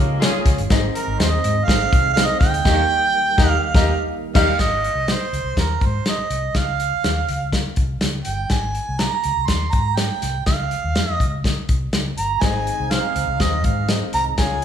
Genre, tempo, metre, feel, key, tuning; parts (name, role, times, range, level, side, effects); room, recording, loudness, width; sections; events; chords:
uptempo 1960s-style soul; 123 BPM; 4/4; straight; Ab major; A4 = 441 Hz
dark horn section; second line; 0.0-0.6, 12.4-14.6 s; Ab3 to Db5; -30 LUFS; right 1 dB
bright upright piano; accompaniment; 0.0-4.5, 12.4-14.6 s; Ab2 to F5; -26 LUFS; left 4 dB
tonewheel organ; sustained chords; 0.0-4.6, 12.4-14.6 s; Db3 to Db4; -32 LUFS; right 4 dB; slow rotary speaker, overdrive, chorus vibrato
vintage muted fingered electric bass; bass; 0.0-14.6 s; G1 to Db3; -24 LUFS; left 1 dB
warm soul drum kit; drums; 0.2-14.6 s; crash cymbal, hi-hat, kick drum, snare drum; -20 LUFS; left 1 dB
mellow harmonica; melody; 0.9-14.6 s; Bb4 to C6; -22 LUFS; right 4 dB
electric guitar at the edge of break-up; riff; 4.3-4.5 s; G3 to Eb4; -26 LUFS; left 6 dB; spring reverb
moderate large studio reverb, RT60 1.3 s; band playing live in one room; -17 LUFS; side -9 dB against mid
0.0-4.6 A section; 4.6-14.6 B section
band accent 2.6-4.6
0.0 Db; 0.7 Ab; 2.6 Eb; 4.6 Ab; 6.5 Db; 8.5 Ab; 10.5 Db; 12.4 Ab